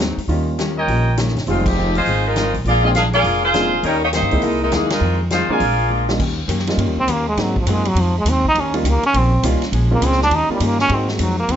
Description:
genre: jazz, big band swing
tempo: 204 BPM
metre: 4/4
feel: swing 63% on 8ths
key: Eb mixolydian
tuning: A4 = 441 Hz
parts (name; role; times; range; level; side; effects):
- archtop guitar, miked and amplified; accompaniment; 0.0-11.6 s; F2 to G4; -27 LUFS; left 5 dB; none
- upright bass; bass; 0.0-11.6 s; F1 to Ab2; -20 LUFS; equal; none
- swinging big-band drum kit; drums; 0.0-11.6 s; crash cymbal, hi-hat, kick drum, ride cymbal, snare drum; -26 LUFS; equal; none
- warm baby grand piano; accompaniment; 0.3-11.6 s; G3 to Gb4; -24 LUFS; right 1 dB; none
- warm trumpet section; stabs; 0.8-5.9 s; Bb4 to Ab5; -24 LUFS; right 1 dB; none
- clear saxophone section; melody; 1.5-6.1 s; E3 to F5; -18 LUFS; left 1 dB; none
- trombone with metal mute; melody; 7.0-11.6 s; Eb3 to Eb4; -18 LUFS; right 1 dB; none
room: light reverb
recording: nothing above 7.8 kHz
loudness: -15 LUFS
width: side -9 dB against mid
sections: 0.0-6.2 A section; 6.2-11.6 B section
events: band accent 1.6, 4.9; drum fill 5.9; trombone solo 6.2-11.6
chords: 0.3 Eb7; 1.5 Fm7; 2.7 Bb7; 3.8 Eb7; 4.4 C7alt; 5.0 Fm7; 5.6 Bb7; 6.2 Eb7; 7.4 Ab7; 8.6 Eb7; 9.7 Bbm7; 10.3 Eb7; 10.9 Ab7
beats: | 0.29 0.58 0.88 1.18 | 1.47 1.77 2.06 2.36 | 2.65 2.95 3.24 3.54 | 3.83 4.13 4.42 4.72 | 5.01 5.31 5.60 5.90 | 6.19 6.49 6.78 7.08 | 7.37 7.67 7.96 8.26 | 8.55 8.84 9.14 9.43 | 9.73 10.02 10.32 10.61 | 10.91 11.20 11.49

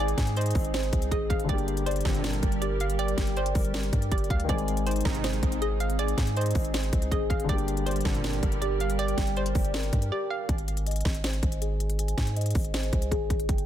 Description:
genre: hip hop, trap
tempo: 160 BPM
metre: 4/4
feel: half-time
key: unclear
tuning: A4 = 440 Hz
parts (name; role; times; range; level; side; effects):
- hollow square pluck; second line; 0.0-10.5 s; C5 to F5; -35 LUFS; right 4 dB; chorus, digital delay
- dark concert grand piano; accompaniment; 0.0-10.5 s; D3 to Ab4; -36 LUFS; left 7 dB; low-pass filter
- hollow soft pad; sustained chords; 0.0-10.5 s; G3 to D5; -37 LUFS; equal; ensemble chorus
- muted felt-like synth keys; arpeggios; 0.0-13.7 s; Eb4 to Ab5; -33 LUFS; equal; chorus, phaser, low-pass filter, digital delay
- long sustained 808-style bass; bass; 0.0-13.7 s; G1 to Ab2; -29 LUFS; equal; none
- trap drum kit; drums; 0.1-13.7 s; hi-hat, kick drum, snare drum; -28 LUFS; equal; none
- sync-sweep polysynth; stabs; 2.1-2.4, 5.1-5.4, 8.1-8.4 s; Bb1 to Eb3; -38 LUFS; right 4 dB; chorus, digital delay
room: digital ambience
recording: dense, heavily limited modern master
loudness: -25 LUFS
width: side -11 dB against mid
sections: 0.0-10.5 A section; 10.5-13.7 B section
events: break 10.1-10.5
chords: 0.0 Ab; 1.5 Gm; 4.5 Ab; 7.5 Gm; 10.5 Ab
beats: 0.36 0.74 1.11 | 1.49 1.86 2.24 2.62 | 2.99 3.37 3.74 4.12 | 4.49 4.87 5.24 5.62 | 5.99 6.37 6.74 7.12 | 7.49 7.87 8.24 8.62 | 8.99 9.37 9.74 10.12 | 10.49 10.87 11.24 11.62 | 11.99 12.37 12.74 13.12 | 13.49

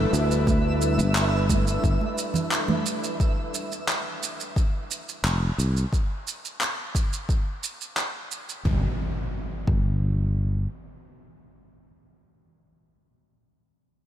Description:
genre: sunset chillout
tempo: 88 BPM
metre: 4/4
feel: straight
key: unclear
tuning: A4 = 441 Hz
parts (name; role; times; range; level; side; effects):
- airy breathy pad; sustained chords; 0.0-3.2 s; G3 to B4; -31 LUFS; equal; chorus
- sustaining fretless electric bass; bass; 0.0-10.7 s; F1 to D2; -23 LUFS; equal; none
- sub drop and impact; sound effects; 0.2-0.5, 8.7-12.9 s; none; -33 LUFS; equal; none
- twinkling granular texture; texture; 0.0-3.2 s; E5; -34 LUFS; right 1 dB; built-in reverb
- electronic shaker and handclaps; drums; 0.1-8.6 s; none; -30 LUFS; right 1 dB; none
- electronic kick drum; drums; 0.5-9.9 s; none; -24 LUFS; equal; none
- congas; percussion; 0.5-2.8 s; none; -30 LUFS; right 3 dB; none
room: moderate cathedral reverb, RT60 5.4 s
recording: dreamy mix soaked in reverb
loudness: -23 LUFS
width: side -11 dB against mid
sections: 0.0-8.7 A section; 8.7-11.4 B section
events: impact 0.0-0.5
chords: 0.0 G69; 3.2 F5; 8.7 N.C.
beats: | 0.47 1.15 1.83 2.52 | 3.20 3.88 4.56 5.24 | 5.92 6.61 7.29 7.97 | 8.65 9.34 10.02 10.70

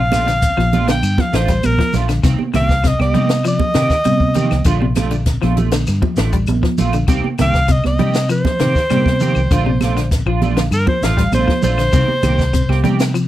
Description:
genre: afrobeat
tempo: 99 BPM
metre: 4/4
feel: straight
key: C dorian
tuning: A4 = 440 Hz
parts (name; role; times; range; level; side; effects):
- bright alto saxophone; melody; 0.0-12.8 s; Bb4 to G5; -19 LUFS; equal; slapback echo
- electric guitar at the edge of break-up; arpeggios; 0.0-13.3 s; C3 to G3; -22 LUFS; left 5 dB; none
- vintage muted fingered electric bass; bass; 0.0-13.3 s; A1 to C3; -18 LUFS; equal; none
- clean electric guitar; stabs; 0.1-13.0 s; Eb3 to G4; -24 LUFS; right 7 dB; analog chorus
- compact cocktail drum kit; drums; 0.1-13.3 s; hi-hat, kick drum, snare drum; -19 LUFS; equal; none
- claves; percussion; 0.1-13.3 s; none; -30 LUFS; left 10 dB; none
- congas; percussion; 0.1-13.0 s; none; -22 LUFS; right 7 dB; none
- shekere; percussion; 0.1-13.3 s; none; -29 LUFS; left 1 dB; none
room: little or no reverb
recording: dry, close 1970s-style studio recording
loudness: -13 LUFS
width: side -13 dB against mid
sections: 0.0-13.3 A section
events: alto saxophone solo 0.0-13.3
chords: 0.0 Bbmaj7; 2.2 Cm7; 4.7 Bbmaj7; 7.1 Cm7; 9.5 Bbmaj7; 11.9 Cm7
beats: 0.43 1.03 1.64 | 2.24 2.85 3.45 4.06 | 4.67 5.27 5.88 6.48 | 7.09 7.70 8.30 8.91 | 9.51 10.12 10.73 11.33 | 11.94 12.55 13.15

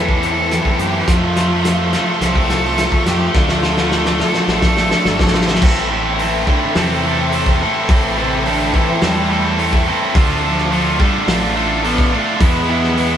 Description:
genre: post-rock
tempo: 106 BPM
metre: 4/4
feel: straight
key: A minor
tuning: A4 = 441 Hz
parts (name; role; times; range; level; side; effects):
- clear cello; melody; 0.0-13.2 s; A2 to A4; -22 LUFS; equal; none
- warm studio string section; sustained chords; 0.0-13.2 s; F4 to D6; -31 LUFS; left 2 dB; none
- twelve-string electric guitar; arpeggios; 0.0-5.6 s; F2 to F4; -23 LUFS; left 3 dB; none
- biting overdriven guitar; riff; 0.0-13.2 s; A2 to A4; -17 LUFS; right 1 dB; none
- growling fingered electric bass; bass; 0.0-13.2 s; G1 to F#2; -22 LUFS; equal; overdrive
- loose indie drum kit; drums; 0.1-13.1 s; crash cymbal, hi-hat, kick drum, snare drum; -18 LUFS; equal; none
room: moderate stone room reverb, RT60 1.0 s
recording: band playing live in one room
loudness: -13 LUFS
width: side -9 dB against mid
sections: 0.0-5.6 A section; 5.6-13.2 B section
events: build-up 0.0-5.6; drum fill 0.0-5.6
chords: 0.0 Amadd9; 1.1 F; 3.4 Dm; 5.6 Am7; 10.2 Dmadd9; 12.4 E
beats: 0.52 | 1.08 1.65 2.22 2.79 | 3.35 3.92 4.49 5.06 | 5.62 6.19 6.76 7.32 | 7.89 8.46 9.02 9.59 | 10.15 10.72 11.28 11.84 | 12.41 12.97

